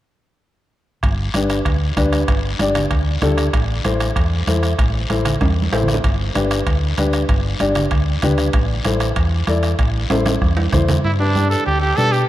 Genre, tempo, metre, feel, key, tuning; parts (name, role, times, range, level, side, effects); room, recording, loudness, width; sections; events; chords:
latin, cumbia; 192 BPM; 4/4; straight; G major; A4 = 440 Hz
fingered electric bass; bass; 1.0-12.2 s; G1 to B2; -20 LUFS; equal
bombo; percussion; 1.0-11.0 s; -22 LUFS; equal
congas; percussion; 1.0-12.1 s; -26 LUFS; right 2 dB
guiro; percussion; 1.0-12.3 s; -31 LUFS; left 5 dB
timbales; percussion; 1.0-11.0 s; -28 LUFS; right 4 dB
dark upright piano; accompaniment; 1.3-12.1 s; D4 to D5; -22 LUFS; left 2 dB
clear trumpet; melody; 11.0-12.3 s; D4 to A4; -18 LUFS; right 2 dB
moderate cathedral reverb, RT60 5.0 s; in a vast, echoing space; -15 LUFS; side -14 dB against mid
1.0-11.0 A section; 11.0-12.3 B section
drum fill 5.4-6.0, 10.1-11.0
1.0 G; 3.5 Am; 6.0 G; 8.5 Am; 11.0 G